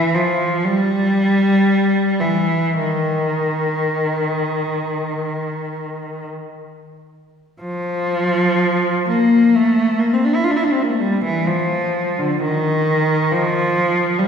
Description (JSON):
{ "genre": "classical, free, expressive piece for unaccompanied cello", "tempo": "39-68 BPM", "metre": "4/4", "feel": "rubato", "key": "unclear", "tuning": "A4 = 442 Hz", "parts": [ { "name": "warm cello", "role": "solo", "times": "0.0-14.3 s", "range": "D3 to F4", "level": "-16 LUFS", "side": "equal", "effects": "none" } ], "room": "wet concert hall reverb, RT60 2.1 s", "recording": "heard from further back in the room", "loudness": "-16 LUFS", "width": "side -7 dB against mid", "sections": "0.0-7.6 A section; 7.6-14.3 B section", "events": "none", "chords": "none" }